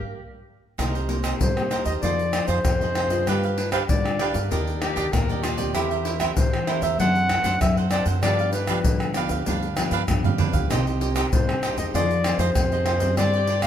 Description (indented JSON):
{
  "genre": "samba and choro",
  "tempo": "97 BPM",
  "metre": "4/4",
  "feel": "straight",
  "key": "C minor",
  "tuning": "A4 = 440 Hz",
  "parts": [
    { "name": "cavaquinho", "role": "accompaniment", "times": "0.8-13.7 s", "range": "D4 to F#5", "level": "-29 LUFS", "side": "right 10 dB", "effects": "none" },
    { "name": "nylon-string guitar", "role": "accompaniment", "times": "0.8-13.7 s", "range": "G2 to C5", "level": "-28 LUFS", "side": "left 3 dB", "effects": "none" },
    { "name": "upright bass", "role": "bass", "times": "0.8-13.7 s", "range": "C2 to G3", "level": "-27 LUFS", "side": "right 1 dB", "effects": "none" },
    { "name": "tube shaker, surdo, pandeiro and tamborim", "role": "percussion", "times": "0.8-13.7 s", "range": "none", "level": "-25 LUFS", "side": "left 1 dB", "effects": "none" },
    { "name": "warm clarinet", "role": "melody", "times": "1.4-13.7 s", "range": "B4 to F#5", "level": "-25 LUFS", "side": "left 2 dB", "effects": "none" },
    { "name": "mellow tenor saxophone", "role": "second line", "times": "4.5-6.2 s", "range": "F4 to Bb4", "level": "-32 LUFS", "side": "left 4 dB", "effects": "none" }
  ],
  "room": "moderate large studio reverb, RT60 1.4 s",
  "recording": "close, detailed microphones",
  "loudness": "-20 LUFS",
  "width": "side -9 dB against mid",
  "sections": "0.8-13.7 A section",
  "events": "band accent 0.0-0.8; drum fill 0.0-0.8, 10.1-10.7",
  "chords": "0.0 N.C.; 0.8 Cm7; 2.0 Fm7; 3.3 G7; 4.5 Ebmaj7; 5.8 C7/E; 7.0 D7/F#; 8.2 G7; 10.7 Cm; 11.9 Fm7",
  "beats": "0.17 | 0.79 1.41 2.03 2.65 | 3.27 3.89 4.51 5.13 | 5.75 6.37 6.99 7.61 | 8.23 8.85 9.47 10.09 | 10.71 11.32 11.94 12.56 | 13.18"
}